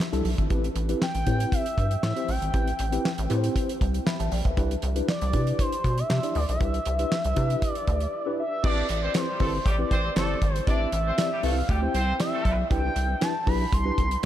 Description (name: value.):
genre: early-eighties boogie funk.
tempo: 118 BPM.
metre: 4/4.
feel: straight.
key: A minor.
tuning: A4 = 440 Hz.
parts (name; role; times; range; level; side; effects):
damped 70s drum kit; drums; 0.0-14.3 s; crash cymbal, handclaps, hi-hat, kick drum, snare drum; -28 LUFS; equal; none.
mellow tine electric piano; accompaniment; 0.1-14.3 s; C4 to B5; -31 LUFS; left 1 dB; medium stereo tremolo.
rubbery square bass; bass; 0.1-14.3 s; G1 to C3; -26 LUFS; equal; none.
expressive synth lead; melody; 1.0-14.3 s; C5 to C6; -30 LUFS; equal; chorus, diffuse ambient delay.
clear horn section; second line; 8.6-12.5 s; G3 to D5; -33 LUFS; right 1 dB; none.
room: light reverb, studio reverb.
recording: none.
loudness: -23 LUFS.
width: side -12 dB against mid.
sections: 0.0-8.6 A section; 8.6-14.3 B section.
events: break 8.1-8.6.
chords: 0.0 Cmaj9; 0.5 Am9; 4.6 Cmaj9; 8.6 Am9; 12.7 Cmaj9.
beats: 0.00 | 0.50 1.01 1.52 2.03 | 2.54 3.05 3.56 4.06 | 4.57 5.08 5.59 6.10 | 6.61 7.11 7.62 8.13 | 8.64 9.15 9.66 10.16 | 10.67 11.18 11.69 12.20 | 12.71 13.22 13.72 14.23.